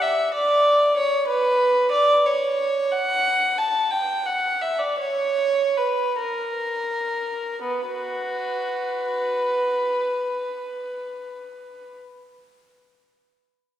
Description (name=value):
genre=classical, baroque-style suite movement for unaccompanied violin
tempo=40-64 BPM (dotted quarters)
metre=6/8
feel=rubato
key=B minor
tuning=A4 = 441 Hz
part: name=warm violin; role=solo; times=0.0-12.0 s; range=B3 to A5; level=-20 LUFS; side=equal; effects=none
room=wet concert hall reverb, RT60 2.2 s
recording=heard from further back in the room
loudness=-20 LUFS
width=side -11 dB against mid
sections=0.0-7.6 A section; 7.6-13.4 B section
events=slowing down 1.9-7.6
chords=none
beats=0.02 | 0.96 1.91 | 2.91 3.92 | 4.98 6.20 | 7.62 9.06 | 10.51 11.96